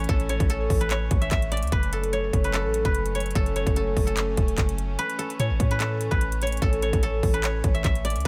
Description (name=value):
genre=hip hop, trap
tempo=147 BPM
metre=4/4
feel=half-time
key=unclear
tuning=A4 = 440 Hz
part: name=guzheng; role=melody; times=0.0-8.3 s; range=A4 to E5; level=-30 LUFS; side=equal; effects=delay
part: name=rich chamber string section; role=sustained chords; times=0.0-8.3 s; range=E3 to C#4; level=-38 LUFS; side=equal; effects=none
part: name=warm 808-style bass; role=bass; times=0.0-8.3 s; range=E1 to A2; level=-29 LUFS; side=equal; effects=none
part: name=trap drum kit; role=drums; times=0.0-8.3 s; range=handclaps, hi-hat, kick drum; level=-28 LUFS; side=equal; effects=none
room=small room ambience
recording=none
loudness=-24 LUFS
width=mono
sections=0.0-8.3 A section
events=kick muted 5.0-5.4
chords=0.0 A; 1.7 F#m; 5.0 A